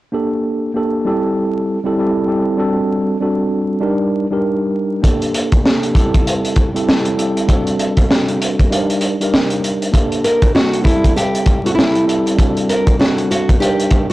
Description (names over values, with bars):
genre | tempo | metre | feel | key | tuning
hip hop, boom-bap hip-hop | 98 BPM | 4/4 | swing 60% on 16ths | G harmonic minor | A4 = 441 Hz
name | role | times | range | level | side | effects
mellow tine electric piano | accompaniment | 0.1-14.1 s | G3 to Bb4 | -17 LUFS | equal | medium stereo tremolo
crunchy breakbeat drum kit | drums | 5.0-14.1 s | hi-hat, kick drum, snare drum | -14 LUFS | equal | none
nylon-string guitar | melody | 10.2-14.1 s | E4 to Bb4 | -18 LUFS | equal | none
room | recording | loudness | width
moderate small room ambience, RT60 0.5 s | blown-out, overdriven recording, vinyl crackle, overdrive | -13 LUFS | side -17 dB against mid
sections
0.1-9.9 A section; 9.9-14.1 B section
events
kick muted 8.7-9.9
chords
0.1 Gmadd9; 1.1 Am7/G; 2.6 D7/G; 3.8 Ebmaj7/G; 5.0 Gmadd9; 6.0 Am7/G; 7.5 D7/G; 8.7 Ebmaj7/G; 9.9 Gmadd9; 10.9 Am7/G; 12.4 D7/G; 13.6 Ebmaj7/G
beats
| 0.14 0.75 1.36 1.98 | 2.59 3.20 3.81 4.42 | 5.04 5.65 6.26 6.87 | 7.49 8.10 8.71 9.32 | 9.94 10.55 11.16 11.77 | 12.38 13.00 13.61